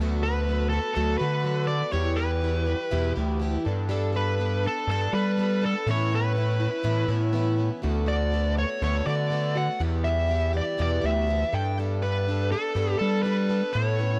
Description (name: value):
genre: folk rock and heartland rock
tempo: 122 BPM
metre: 4/4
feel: straight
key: D major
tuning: A4 = 440 Hz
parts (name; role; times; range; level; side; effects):
- picked plugged-in twelve-string acoustic guitar; accompaniment; 0.0-14.2 s; E2 to A4; -33 LUFS; equal; none
- gritty driven synth bass; bass; 0.0-14.2 s; D2 to G3; -28 LUFS; equal; distortion
- smooth overdriven lead guitar; melody; 0.2-14.2 s; A4 to G5; -31 LUFS; equal; none
room: light reverb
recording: dark, warm production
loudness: -26 LUFS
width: mono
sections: 0.0-14.2 A section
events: none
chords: 0.0 D6; 1.9 Em; 3.7 Gadd9; 5.9 Aadd9; 7.8 D6; 9.8 Em; 11.5 Gadd9